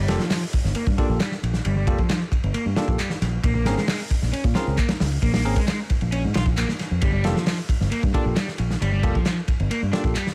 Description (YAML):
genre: breakbeat, breaks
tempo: 134 BPM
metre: 4/4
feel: straight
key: G minor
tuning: A4 = 440 Hz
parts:
  - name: overdriven semi-hollow guitar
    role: riff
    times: 0.0-10.3 s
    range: F3 to F4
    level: -30 LUFS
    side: equal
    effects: vintage 12-bit sampler grit, low-pass filter, digital delay
  - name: fingered electric bass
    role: bass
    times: 0.0-10.1 s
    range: F1 to Bb2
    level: -26 LUFS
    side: equal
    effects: tube saturation
  - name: bell-like tine electric piano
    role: stabs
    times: 0.1-10.1 s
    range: Bb3 to Bb4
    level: -33 LUFS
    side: equal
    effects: digital delay
  - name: crunchy breakbeat drum kit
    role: drums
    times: 0.1-10.3 s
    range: hi-hat, kick drum, ride cymbal, snare drum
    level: -26 LUFS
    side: equal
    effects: none
  - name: electronic handclaps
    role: drums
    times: 0.3-10.2 s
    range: none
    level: -35 LUFS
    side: equal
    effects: none
room: small room ambience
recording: vinyl crackle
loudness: -23 LUFS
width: mono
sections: 0.0-10.3 A section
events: filter sweep on overdriven electric guitar 0.0-10.3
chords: 0.0 Gm9; 3.4 Bbm9; 7.0 Gm9